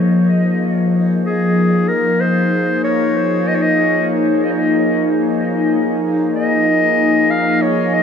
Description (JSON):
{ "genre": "ambient dub", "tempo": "free time", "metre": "none", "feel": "none", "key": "Bb minor", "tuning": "A4 = 443 Hz", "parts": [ { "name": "warbly tape-like pad", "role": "sustained chords", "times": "0.0-8.0 s", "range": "F3 to Eb5", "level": "-15 LUFS", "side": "left 2 dB", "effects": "chorus, built-in reverb" }, { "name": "warm clarinet", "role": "melody", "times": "1.2-8.0 s", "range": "Ab4 to F5", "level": "-18 LUFS", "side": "right 1 dB", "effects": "dub echo" } ], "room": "wet huge ambient reverb, RT60 6.4 s", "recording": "none", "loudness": "-13 LUFS", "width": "side -7 dB against mid", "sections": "0.0-8.0 A section", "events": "none", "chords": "0.0 Bb5; 6.0 Bbm7" }